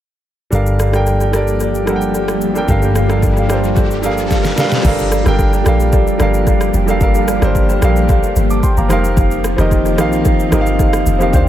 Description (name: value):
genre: amapiano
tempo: 111 BPM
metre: 4/4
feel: straight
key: G minor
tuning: A4 = 442 Hz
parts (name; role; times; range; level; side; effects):
- warm grand piano; accompaniment; 0.5-11.5 s; Eb3 to D6; -16 LUFS; right 1 dB; analog delay
- soft string machine; sustained chords; 0.9-11.5 s; Eb3 to G4; -21 LUFS; left 1 dB; ensemble chorus, sidechain pumping
- hollow-body short-scale fingered electric bass; bass; 0.5-4.5 s; G1; -17 LUFS; equal; none
- deep house drum kit; drums; 0.5-11.5 s; crash cymbal, kick drum, rim click, shaker, snare drum; -17 LUFS; equal; analog delay
- riser; sound effects; 2.2-4.8 s; none; -28 LUFS; equal; none
- deep log drum bass; bass; 4.8-11.5 s; F1 to Eb2; -16 LUFS; equal; none
room: light reverb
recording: echo-heavy mix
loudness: -12 LUFS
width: side -12 dB against mid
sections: 0.5-4.8 A section; 4.8-11.5 B section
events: riser 2.2-4.8; drum fill 4.3-4.8; drop 4.8-11.5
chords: 0.5 Gm9; 8.9 F7sus4